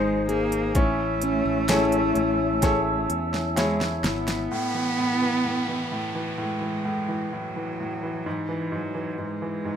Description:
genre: pop ballad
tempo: 64 BPM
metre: 4/4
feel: straight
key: A major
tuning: A4 = 440 Hz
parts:
  - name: clear cello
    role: melody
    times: 0.0-9.8 s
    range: E3 to B3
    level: -29 LUFS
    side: right 2 dB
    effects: none
  - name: bright baby grand piano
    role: accompaniment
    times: 0.0-9.8 s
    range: G#2 to C#5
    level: -28 LUFS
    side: left 1 dB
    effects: none
  - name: mellow hollow small flute group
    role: sustained chords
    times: 0.0-4.5 s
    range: B#4 to E6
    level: -28 LUFS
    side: right 1 dB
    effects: none
  - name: fingerpicked plugged-in steel-string acoustic guitar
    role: arpeggios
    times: 0.0-5.1 s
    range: G#2 to G#4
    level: -27 LUFS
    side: left 3 dB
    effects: none
  - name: modern bright fingered electric bass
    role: bass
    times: 0.0-4.5 s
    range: G#1 to E2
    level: -31 LUFS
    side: equal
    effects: none
  - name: pop drum kit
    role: drums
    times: 0.3-4.5 s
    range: hi-hat, kick drum, snare drum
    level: -26 LUFS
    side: equal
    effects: none
  - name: downlifter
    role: sound effects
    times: 4.5-9.8 s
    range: none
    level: -36 LUFS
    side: equal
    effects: none
room: wet small room reverb, RT60 0.5 s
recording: rough home demo mix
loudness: -23 LUFS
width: side -8 dB against mid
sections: 0.0-4.5 A section; 4.5-9.8 B section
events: drum fill 2.6-4.5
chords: 0.0 G#; 0.8 Amaj7; 4.5 A5; 8.3 E/G#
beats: | 0.76 1.70 2.63 3.57 | 4.51 5.45 6.38 7.32 | 8.26 9.20

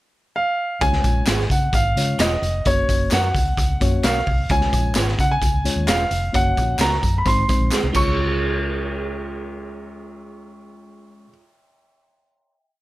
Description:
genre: uptempo 1960s-style soul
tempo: 131 BPM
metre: 4/4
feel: straight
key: Db major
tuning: A4 = 440 Hz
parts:
  - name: clear grand piano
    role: melody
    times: 0.4-11.3 s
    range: Db5 to Db6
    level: -23 LUFS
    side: right 1 dB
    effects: none
  - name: reed electric piano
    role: accompaniment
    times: 0.8-11.3 s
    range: Ab3 to Db5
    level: -28 LUFS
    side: left 3 dB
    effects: none
  - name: vintage muted fingered electric bass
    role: bass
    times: 0.8-11.3 s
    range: Fb1 to Db3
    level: -24 LUFS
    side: equal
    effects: none
  - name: raw garage drum kit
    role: drums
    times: 0.8-8.1 s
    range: crash cymbal, hi-hat, kick drum, snare drum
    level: -22 LUFS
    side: equal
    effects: none
  - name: tambourine and handclaps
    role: percussion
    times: 0.8-8.4 s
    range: none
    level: -30 LUFS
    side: equal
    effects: none
  - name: electric guitar through a small old amp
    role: stabs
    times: 1.3-11.5 s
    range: Db4 to Db5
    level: -28 LUFS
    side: right 6 dB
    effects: analog chorus
room: light reverb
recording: none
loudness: -17 LUFS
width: side -17 dB against mid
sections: 0.0-0.8 pickup bar; 0.8-8.2 verse; 8.2-11.8 final hit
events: drum fill 7.7-8.2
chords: 0.0 N.C.; 0.8 Db; 2.7 Gb; 4.5 Db; 6.3 Gb; 7.3 Ab; 7.9 Db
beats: 0.35 | 0.81 1.27 1.74 2.20 | 2.66 3.12 3.58 4.04 | 4.50 4.96 5.42 5.88 | 6.34 6.80 7.26 7.71 | 8.17 8.63 9.09 9.54 | 10.00 10.46 10.92 11.37

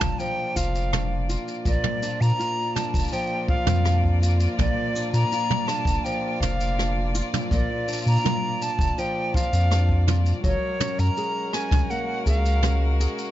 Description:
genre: folktronica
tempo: 82 BPM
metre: 4/4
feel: straight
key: unclear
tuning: A4 = 441 Hz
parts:
  - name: bright silver concert flute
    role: melody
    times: 0.0-13.0 s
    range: Db5 to Bb5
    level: -28 LUFS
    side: equal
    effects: ping-pong delay
  - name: dark string quartet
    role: sustained chords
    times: 0.0-13.3 s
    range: Ab3 to D5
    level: -32 LUFS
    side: left 1 dB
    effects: vintage 12-bit sampler grit
  - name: flamenco guitar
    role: arpeggios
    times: 0.0-13.3 s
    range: Bb2 to Ab4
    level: -31 LUFS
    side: equal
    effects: vintage 12-bit sampler grit, ping-pong delay
  - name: warm sub bass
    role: bass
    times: 0.0-13.1 s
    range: F1 to Bb2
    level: -21 LUFS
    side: equal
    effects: none
  - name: jazz brush drum kit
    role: drums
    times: 0.0-13.3 s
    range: rim click, shaker, toms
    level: -30 LUFS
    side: right 1 dB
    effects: none
  - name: kick drum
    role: drums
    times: 0.0-12.4 s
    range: none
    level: -26 LUFS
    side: equal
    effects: none
room: studio reverb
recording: nothing above 7.6 kHz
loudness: -21 LUFS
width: side -13 dB against mid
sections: 0.0-13.3 A section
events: none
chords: 0.0 Bb; 10.4 Gbadd9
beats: 0.19 0.93 | 1.66 2.39 3.12 3.85 | 4.58 5.32 6.05 6.78 | 7.51 8.24 8.97 9.71 | 10.44 11.17 11.90 12.63

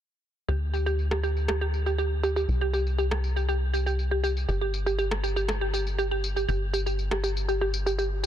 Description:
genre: progressive house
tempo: 120 BPM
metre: 4/4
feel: straight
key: unclear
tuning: A4 = 440 Hz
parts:
  - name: glassy wavetable pluck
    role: arpeggios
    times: 0.5-8.3 s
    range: G4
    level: -28 LUFS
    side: right 2 dB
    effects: chorus, tape echo
  - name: tight sequencer bass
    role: bass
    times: 0.5-8.3 s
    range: G1 to D2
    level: -27 LUFS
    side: left 1 dB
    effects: none
  - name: electronic tambourine and rim click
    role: drums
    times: 0.5-8.3 s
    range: none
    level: -35 LUFS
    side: left 1 dB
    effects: overdrive, low-pass filter on perc, low-pass filter on snare
room: light reverb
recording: dense, heavily limited modern master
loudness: -25 LUFS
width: side -10 dB against mid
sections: 0.5-8.3 A section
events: filter sweep on drum 0.5-8.3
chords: 0.5 Dsus4; 2.5 C5; 4.5 N.C.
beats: | 0.48 0.98 1.49 1.99 | 2.48 2.98 3.48 3.98 | 4.49 4.99 5.49 5.99 | 6.49 6.99 7.49 7.99

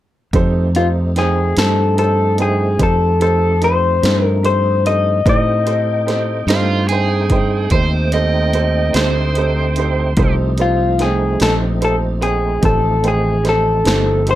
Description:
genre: slow blues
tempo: 49 BPM (dotted quarters)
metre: 12/8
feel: straight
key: F mixolydian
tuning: A4 = 438 Hz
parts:
  - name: clear upright piano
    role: accompaniment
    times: 0.3-14.4 s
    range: A3 to G5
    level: -23 LUFS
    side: right 5 dB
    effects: none
  - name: tonewheel organ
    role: sustained chords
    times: 0.3-14.4 s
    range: F3 to G5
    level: -25 LUFS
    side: equal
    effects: slow rotary speaker, overdrive, chorus vibrato
  - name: fingered electric bass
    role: bass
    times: 0.3-14.4 s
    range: G1 to A2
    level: -17 LUFS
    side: equal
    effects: none
  - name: punchy analog drum machine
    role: drums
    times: 0.3-14.4 s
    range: hi-hat, kick drum, snare drum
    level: -20 LUFS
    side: equal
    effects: none
  - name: electric guitar through a small old amp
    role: melody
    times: 0.8-14.4 s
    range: F4 to Eb5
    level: -16 LUFS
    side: left 3 dB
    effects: none
  - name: overdriven slide guitar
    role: second line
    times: 6.5-10.3 s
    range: F4 to Eb5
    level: -20 LUFS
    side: right 5 dB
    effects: none
room: little or no reverb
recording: none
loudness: -13 LUFS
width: side -13 dB against mid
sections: 0.3-14.4 A section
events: none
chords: 0.3 F9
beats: | 0.34 1.57 2.80 4.03 | 5.26 6.49 7.71 8.95 | 10.18 11.40 12.63 13.86

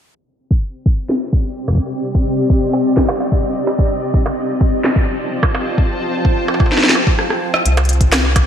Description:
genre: IDM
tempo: 128 BPM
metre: 4/4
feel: straight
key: C minor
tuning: A4 = 440 Hz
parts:
  - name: granular cloud pad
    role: sustained chords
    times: 1.4-8.5 s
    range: C4 to A5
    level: -19 LUFS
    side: equal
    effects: built-in reverb
  - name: electronic kick drum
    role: drums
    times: 0.5-8.5 s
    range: none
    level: -15 LUFS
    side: equal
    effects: none
  - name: organic electronic drum kit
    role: drums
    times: 1.1-8.5 s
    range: bongos, hi-hat, rim click, snare drum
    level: -18 LUFS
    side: equal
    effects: gated reverb
  - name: round analog bass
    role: bass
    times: 7.7-8.5 s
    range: C2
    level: -14 LUFS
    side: equal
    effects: none
room: moderate lush hall reverb, RT60 1.8 s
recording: bright 1980s-style digital production, low-pass filter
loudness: -14 LUFS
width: side -9 dB against mid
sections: 0.2-7.7 A section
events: filter sweep 0.2-7.7; drum fill 7.2-7.7; stop 7.2-7.7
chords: 0.2 Cm; 3.9 F7; 7.7 C5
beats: | 0.15 0.62 1.09 1.56 | 2.03 2.50 2.97 3.44 | 3.90 4.37 4.84 5.31 | 5.78 6.25 6.72 7.19 | 7.66 8.12

